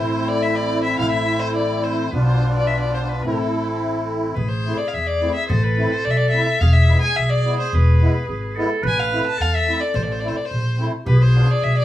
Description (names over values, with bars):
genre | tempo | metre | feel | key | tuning
klezmer | 107 BPM | 2/4 | straight | A harmonic minor | A4 = 440 Hz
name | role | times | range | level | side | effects
warm violin | melody | 0.0-11.8 s | A4 to A5 | -23 LUFS | left 3 dB | plate reverb
musette accordion | accompaniment | 0.0-11.5 s | G#3 to F4 | -23 LUFS | equal | none
upright bass | bass | 0.0-11.8 s | E1 to E2 | -19 LUFS | equal | none
clear clarinet | second line | 4.4-11.8 s | G#4 to B4 | -25 LUFS | right 3 dB | none
room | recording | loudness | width
light reverb | small room ambience | -17 LUFS | side -13 dB against mid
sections
0.0-4.4 A section; 4.4-11.8 A section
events
none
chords
0.0 Am; 2.1 Bdim; 3.2 Am; 6.6 E; 8.8 Am; 11.1 Bdim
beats
0.43 | 0.99 1.56 | 2.12 2.68 | 3.24 3.80 | 4.36 4.92 | 5.48 6.04 | 6.60 7.16 | 7.72 8.28 | 8.83 9.39 | 9.95 10.50 | 11.06 11.62